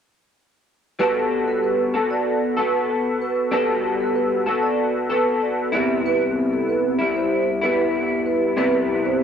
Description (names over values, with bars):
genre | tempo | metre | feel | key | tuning
indie pop | 95 BPM | 4/4 | straight | G major | A4 = 440 Hz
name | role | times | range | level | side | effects
vibraphone with soft mallets | second line | 1.0-9.2 s | A4 to E5 | -24 LUFS | right 7 dB | analog chorus, slapback echo
electric guitar through a small old amp | accompaniment | 1.0-9.2 s | C3 to A4 | -20 LUFS | left 2 dB | analog chorus, warbly pitch drift
room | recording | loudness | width
light reverb, small room reverb | dry, close 1970s-style studio recording | -18 LUFS | side -8 dB against mid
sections
1.0-9.2 A section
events
none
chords
1.0 Gmaj9; 5.7 Cmaj7